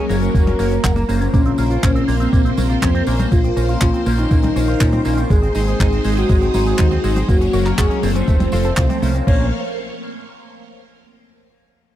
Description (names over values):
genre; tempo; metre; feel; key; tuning
italo disco; 121 BPM; 4/4; straight; Bb minor; A4 = 440 Hz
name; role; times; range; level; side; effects
soft octave-layered synth lead; melody; 0.0-9.5 s; C4 to Db5; -22 LUFS; left 1 dB; chorus, tremolo, tape echo
phased string machine; sustained chords; 0.0-9.5 s; F3 to F5; -24 LUFS; equal; ensemble chorus, phaser
electric guitar with an envelope filter; arpeggios; 0.0-9.5 s; Ab3 to Gb5; -28 LUFS; right 3 dB; tape echo
chorused polysynth; stabs; 0.0-9.5 s; C4 to Db5; -26 LUFS; left 2 dB; phaser, cassette tape
fingered electric bass with an envelope filter; bass; 0.1-9.5 s; F1 to Bb2; -19 LUFS; equal; none
tight funk drum kit; drums; 0.1-9.4 s; crash cymbal, handclaps, hi-hat, tambourine, toms; -26 LUFS; left 1 dB; none
electronic kick drum; drums; 0.3-9.4 s; none; -16 LUFS; equal; none
room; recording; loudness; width
little or no reverb; dry, close 1970s-style studio recording; -14 LUFS; side -12 dB against mid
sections
0.0-9.3 A section; 9.3-11.3 B section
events
none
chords
0.0 Gb; 1.3 Bbmadd9; 5.3 Ab; 7.3 Gb; 8.3 F; 9.3 Bbmadd9